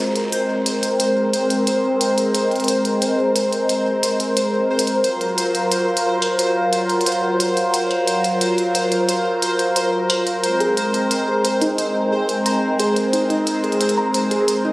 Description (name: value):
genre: IDM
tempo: 89 BPM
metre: 4/4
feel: straight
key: unclear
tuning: A4 = 441 Hz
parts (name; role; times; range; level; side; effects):
- warm analog pad; sustained chords; 0.0-14.7 s; Gb3 to Bb4; -19 LUFS; equal; chorus
- pulsing gated texture; texture; 0.0-14.7 s; C5; -23 LUFS; equal; chorus, built-in reverb
- electronic hi-hat; drums; 0.2-14.6 s; none; -24 LUFS; equal; small room ambience, digital delay
- harp-like synth pluck; arpeggios; 10.6-14.7 s; Eb4 to Bb5; -23 LUFS; equal; chorus, cassette tape, tape echo
room: moderate lush hall reverb, RT60 2.1 s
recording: recorded on a phone in the room, studio reverb, compression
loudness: -16 LUFS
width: side -20 dB against mid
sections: 0.0-14.7 A section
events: filter sweep on analog synth pad 0.0-14.7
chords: 0.0 Abadd9; 5.0 Gbmaj7; 10.4 Abadd9